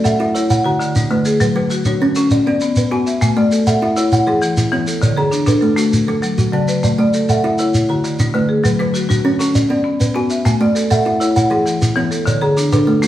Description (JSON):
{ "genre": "southern african traditional, mbira-style interlocking cycle", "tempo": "132 BPM (dotted quarters)", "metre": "12/8", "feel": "straight", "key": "A major", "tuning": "A4 = 442 Hz", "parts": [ { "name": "kalimba", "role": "arpeggios", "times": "0.0-13.1 s", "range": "C#3 to G#5", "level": "-18 LUFS", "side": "right 1 dB", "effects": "none" }, { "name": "marimba with medium hard mallets", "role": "arpeggios", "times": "0.0-13.1 s", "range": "D3 to G#5", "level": "-17 LUFS", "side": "left 2 dB", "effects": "none" }, { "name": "shekere", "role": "percussion", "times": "0.1-13.1 s", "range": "none", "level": "-20 LUFS", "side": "equal", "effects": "none" } ], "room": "wet stone room reverb, RT60 1.2 s", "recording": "band playing live in one room, vinyl crackle", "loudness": "-13 LUFS", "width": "side -13 dB against mid", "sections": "0.0-13.1 A section", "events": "none", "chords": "0.0 A; 0.5 D; 1.4 F#m; 2.3 Bm; 3.2 A; 4.1 E; 5.0 D; 5.9 F#m; 6.8 A; 7.7 D; 8.6 F#m; 9.6 Bm; 10.5 A; 11.4 E; 12.3 D5" }